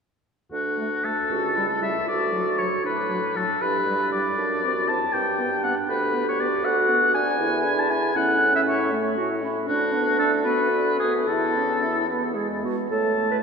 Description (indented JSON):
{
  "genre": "quick classical-period movement for wind quintet",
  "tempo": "78 BPM (dotted quarters)",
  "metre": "6/8",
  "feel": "rubato",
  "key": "D major, A major from 6.6 s",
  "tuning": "A4 = 439 Hz",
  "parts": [
    { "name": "clear oboe", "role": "second line", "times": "0.5-13.4 s", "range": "F#4 to A5", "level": "-23 LUFS", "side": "left 2 dB", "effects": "none" },
    { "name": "warm clarinet", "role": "accompaniment", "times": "0.5-13.4 s", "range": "A3 to B4", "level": "-29 LUFS", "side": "right 5 dB", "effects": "none" },
    { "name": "dark bassoon", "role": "bass", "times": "0.5-13.4 s", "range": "C#2 to A2", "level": "-27 LUFS", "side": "equal", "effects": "none" },
    { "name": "warm French horn", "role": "accompaniment", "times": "0.8-13.4 s", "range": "F#3 to E4", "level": "-30 LUFS", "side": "equal", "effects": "none" },
    { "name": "silver concert flute", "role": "melody", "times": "12.9-13.4 s", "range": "C#5", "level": "-31 LUFS", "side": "left 5 dB", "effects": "none" }
  ],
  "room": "wet cathedral reverb, RT60 4.3 s",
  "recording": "minimal, uncompressed stereo recording",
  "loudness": "-20 LUFS",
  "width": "side -5 dB against mid",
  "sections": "0.5-12.9 A section",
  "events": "none",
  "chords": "0.5 D; 1.3 A7/C#; 2.1 D; 3.6 G; 4.4 D7/F#; 5.1 G; 6.6 Bm/D; 7.4 E7; 8.2 A; 9.7 Bm/D; 11.3 A/E; 12.1 E; 12.9 A"
}